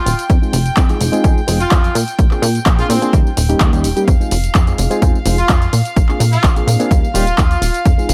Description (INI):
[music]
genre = filtered disco house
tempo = 127 BPM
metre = 4/4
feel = straight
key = F minor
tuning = A4 = 440 Hz
[part]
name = bright horn section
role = melody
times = 0.0-7.8 s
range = C4 to F4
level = -24 LUFS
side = equal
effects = sidechain pumping, delay
[part]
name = rich chamber string section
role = sustained chords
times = 0.0-8.1 s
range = F5 to G5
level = -29 LUFS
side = equal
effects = vintage 12-bit sampler grit, sidechain pumping
[part]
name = plucky analog bass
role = bass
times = 0.1-8.1 s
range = Eb1 to Bb2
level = -19 LUFS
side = equal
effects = sidechain pumping
[part]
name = punchy analog drum machine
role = drums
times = 0.1-8.1 s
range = handclaps, hi-hat, tambourine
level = -24 LUFS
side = equal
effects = overdrive, sidechain pumping on hats, sidechain pumping on cymbals, sidechain pumping on perc
[part]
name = electronic kick drum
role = drums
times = 0.3-8.0 s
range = none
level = -15 LUFS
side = equal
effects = overdrive
[part]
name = reed electric piano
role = accompaniment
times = 0.4-8.1 s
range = G3 to Ab4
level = -22 LUFS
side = equal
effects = phaser, sidechain pumping
[sound]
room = digital ambience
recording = none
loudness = -14 LUFS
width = mono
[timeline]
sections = 0.0-8.1 A section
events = none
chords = 0.3 Fm7; 1.9 Bb9; 3.1 Eb7; 4.1 Fm7; 5.7 Bb9; 6.9 Eb7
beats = | 0.30 0.77 1.24 1.71 | 2.19 2.66 3.13 3.60 | 4.08 4.55 5.02 5.49 | 5.97 6.44 6.91 7.38 | 7.86